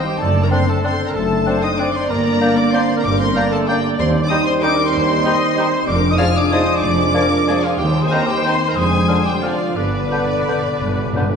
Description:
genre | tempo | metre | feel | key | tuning
classical | 162-205 BPM | 3/4 | rubato | G minor, C minor from 4.0 s | A4 = 440 Hz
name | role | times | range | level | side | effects
rich chamber violin section | melody | 0.0-11.4 s | D5 to F6 | -23 LUFS | left 4 dB | none
rich chamber viola section | accompaniment | 0.0-11.4 s | Ab4 to Eb5 | -24 LUFS | left 1 dB | none
dark French horn section | sustained chords | 0.0-11.4 s | D3 to F4 | -22 LUFS | left 2 dB | none
dark trombone section | sustained chords | 0.0-11.4 s | D3 to C4 | -23 LUFS | right 3 dB | none
warm cor anglais | second line | 0.1-11.4 s | D4 to F5 | -24 LUFS | right 1 dB | none
rich symphonic double bass section | bass | 0.2-11.1 s | F1 to Eb2 | -25 LUFS | right 2 dB | none
warm studio cello section | bass | 0.2-11.1 s | Eb2 to G2 | -23 LUFS | right 1 dB | none
mellow clarinet | second line | 0.5-11.3 s | B4 to Eb5 | -30 LUFS | left 1 dB | none
mellow hollow concert flute | second line | 0.5-11.2 s | F6 to Ab6 | -30 LUFS | left 2 dB | none
rich chamber violin section | second line | 0.5-11.2 s | G3 to Eb4 | -29 LUFS | left 3 dB | none
warm bassoon | accompaniment | 0.5-11.3 s | D3 to C4 | -26 LUFS | equal | none
timpani | percussion | 9.8-11.4 s | G2 | -26 LUFS | left 1 dB | none
room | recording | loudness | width
wet recital hall reverb, RT60 1.9 s | recorded in a church or concert hall, nothing above 10.4 kHz | -14 LUFS | side -6 dB against mid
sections
0.0-11.4 A section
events
timpani fill 9.8-11.4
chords
0.2 D7/F#; 2.1 Gm; 4.0 Cm/Eb; 5.9 Ddim/F; 7.8 Cm/Eb; 8.8 Dm7b5/F; 9.8 G

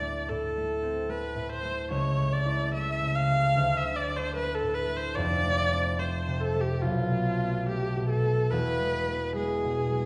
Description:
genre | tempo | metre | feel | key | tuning
classical, romantic duo for viola and harp | 73 BPM | 4/4 | rubato | unclear | A4 = 437 Hz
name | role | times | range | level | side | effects
clear viola | melody | 0.0-10.1 s | F4 to F5 | -31 LUFS | equal | none
concert harp | accompaniment | 0.0-10.1 s | E1 to E4 | -31 LUFS | equal | none
room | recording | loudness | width
wet recital hall reverb, RT60 1.3 s | heard from further back in the room | -28 LUFS | mono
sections
0.0-10.1 A section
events
none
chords
0.0 D5; 1.9 A/C#; 3.6 D5; 5.2 F; 6.8 G9/B; 8.5 E

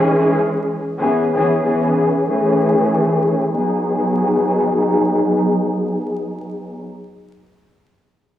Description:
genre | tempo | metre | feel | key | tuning
hip hop | 95 BPM | 4/4 | swing 56% on 16ths | G# phrygian | A4 = 439 Hz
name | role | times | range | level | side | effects
warm studio string section | accompaniment | 0.0-6.8 s | E3 to G#4 | -15 LUFS | left 1 dB | high-pass filter, low-pass filter, cassette tape
room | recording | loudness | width
light reverb, digital ambience | home recording on cassette, vinyl crackle, small room ambience | -15 LUFS | side -12 dB against mid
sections
0.0-3.5 A section; 3.5-6.1 B section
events
filter sweep on string section 0.0-3.5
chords
0.0 C#m; 1.0 E6; 2.3 Amaj7; 3.5 G#m7

